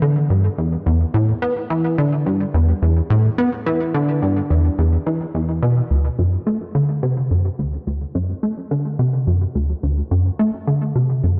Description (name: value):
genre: ambient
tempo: 107 BPM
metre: 4/4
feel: straight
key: unclear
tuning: A4 = 438 Hz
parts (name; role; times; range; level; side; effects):
- plucky analog bass; solo; 0.0-11.4 s; D2 to B3; -19 LUFS; equal; lush chorus, tape echo
room: moderate plate reverb, RT60 3.0 s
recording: dreamy mix soaked in reverb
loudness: -19 LUFS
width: mono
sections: 0.0-11.4 A section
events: none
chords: none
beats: 0.30 0.86 | 1.42 1.98 2.54 3.10 | 3.66 4.22 4.79 5.35 | 5.91 6.47 7.03 7.59 | 8.15 8.71 9.27 9.83 | 10.39 10.95